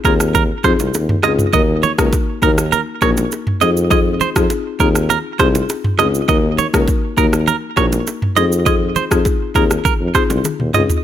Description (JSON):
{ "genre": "afrobeats", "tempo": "101 BPM", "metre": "4/4", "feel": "straight", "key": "unclear", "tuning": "A4 = 442 Hz", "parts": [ { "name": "buzzing marimba with medium mallets", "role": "accompaniment", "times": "0.0-10.9 s", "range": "Bb3 to Bb4", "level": "-20 LUFS", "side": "left 7 dB", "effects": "none" }, { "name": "warm tuba", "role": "bass", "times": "0.0-10.9 s", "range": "Bb1 to F2", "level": "-18 LUFS", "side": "equal", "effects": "none" }, { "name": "afro-pop drum kit", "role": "drums", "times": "0.0-11.0 s", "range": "kick drum, rim click, shaker, toms", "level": "-18 LUFS", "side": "equal", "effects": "none" }, { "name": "direct-recorded clean electric guitar", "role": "riff", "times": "0.1-10.8 s", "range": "Bb4 to Eb5", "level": "-18 LUFS", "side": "right 10 dB", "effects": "tape echo" }, { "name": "congas and bongos", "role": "percussion", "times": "0.3-10.9 s", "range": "none", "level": "-26 LUFS", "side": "right 4 dB", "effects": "none" } ], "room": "studio reverb", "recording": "none", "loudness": "-13 LUFS", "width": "side -10 dB against mid", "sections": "0.0-11.0 A section", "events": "drum fill 10.4-11.0", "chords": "0.0 Fm7; 1.5 Ebm; 3.6 Fm7; 6.3 Ebm; 8.4 Fm7" }